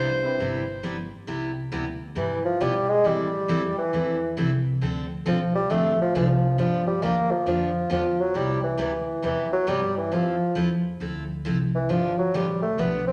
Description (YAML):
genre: country, western swing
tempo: 136 BPM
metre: 4/4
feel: swing 66% on 8ths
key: C major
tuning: A4 = 439 Hz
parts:
  - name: warm fiddle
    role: melody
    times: 0.0-0.8 s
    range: C5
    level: -29 LUFS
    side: equal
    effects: none
  - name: warm bassoon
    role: second line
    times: 0.0-13.1 s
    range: G2 to C4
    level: -26 LUFS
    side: equal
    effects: none
  - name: picked steel-string acoustic guitar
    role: accompaniment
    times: 0.0-13.0 s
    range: C3 to A4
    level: -30 LUFS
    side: equal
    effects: none
  - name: upright bass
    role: bass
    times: 0.0-13.1 s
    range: G1 to B2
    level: -33 LUFS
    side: equal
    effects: none
room: wet large studio reverb, RT60 1.4 s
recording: none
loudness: -25 LUFS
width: mono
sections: 0.0-1.3 A section; 1.3-13.1 B section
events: bassoon solo 1.3-13.1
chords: 0.0 Cmaj7; 1.3 Cmaj9; 3.1 Am7; 4.8 Dm7; 6.6 G6; 8.4 Cmaj7; 10.1 Fmaj7; 11.9 G9